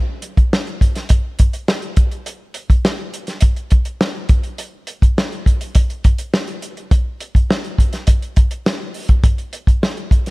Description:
soul; 103 BPM; 4/4; straight
warm soul drum kit; drums; 0.2-10.3 s; hi-hat, kick drum, snare drum; -14 LUFS; equal
little or no reverb; -14 LUFS; side -24 dB against mid
0.0-10.3 A section
0.52 1.10 1.68 | 2.26 2.84 3.42 4.01 | 4.59 5.17 5.75 6.33 | 6.91 7.49 8.07 8.66 | 9.24 9.82

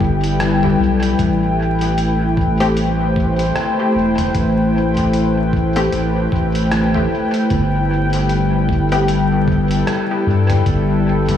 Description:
ambient dub; 76 BPM; 4/4; swing 58% on 16ths; A minor; A4 = 439 Hz
warbly tape-like pad; sustained chords; 0.0-11.4 s; G3 to G5; -17 LUFS; left 2 dB; chorus, built-in reverb
soft dub sub bass; bass; 0.0-11.4 s; E1 to G2; -18 LUFS; equal
electronic kick drum; drums; 0.0-11.4 s; -22 LUFS; equal
lo-fi sampler-style drum kit; drums; 0.2-11.4 s; hi-hat, rim click, toms; -27 LUFS; equal; dub echo
filtered dub chord stab; stabs; 2.6-9.1 s; A3 to G4; -26 LUFS; left 2 dB; chorus, dub echo
wet huge ambient reverb, RT60 8.8 s; dreamy mix soaked in reverb, vinyl crackle, small room ambience; -14 LUFS; side -9 dB against mid
0.0-11.4 A section
0.0 G6; 1.2 Am7; 7.5 G6
0.40 | 1.19 1.98 2.77 3.56 | 4.35 5.13 5.92 6.71 | 7.50 8.29 9.08 9.87 | 10.66

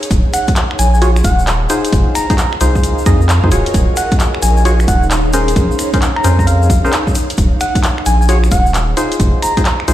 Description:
UK garage, two-step garage; 132 BPM; 4/4; swing 65% on 16ths; Eb dorian; A4 = 438 Hz
house drum kit; drums; 0.0-9.9 s; finger snaps, handclaps, hi-hat; -21 LUFS; equal
egg shaker; percussion; 0.0-9.9 s; -26 LUFS; left 3 dB
ethereal airy pad; texture; 0.0-9.9 s; Eb4 to Ab5; -24 LUFS; equal; ensemble chorus, built-in reverb, sidechain pumping
soft dub sub bass; bass; 0.1-9.9 s; Eb1 to F2; -13 LUFS; equal
electronic kick drum; drums; 0.1-9.6 s; -14 LUFS; equal; overdrive
soft struck synth lead; melody; 0.3-9.8 s; F5 to Bb5; -20 LUFS; left 1 dB; chorus, tape echo
percussive organ stab; stabs; 1.0-9.9 s; Db4 to Eb5; -19 LUFS; left 1 dB; chorus, tape echo
light reverb; played on a big sound system in a bare room, stone room reverb; -11 LUFS; side -13 dB against mid
0.0-9.9 A section
0.1 Ebm11; 5.6 Bbm9; 7.4 Ebm11; 9.0 Ebsus4
| 0.11 0.56 1.02 1.47 | 1.93 2.38 2.83 3.29 | 3.74 4.20 4.65 5.11 | 5.56 6.02 6.47 6.92 | 7.38 7.83 8.29 8.74 | 9.20 9.65

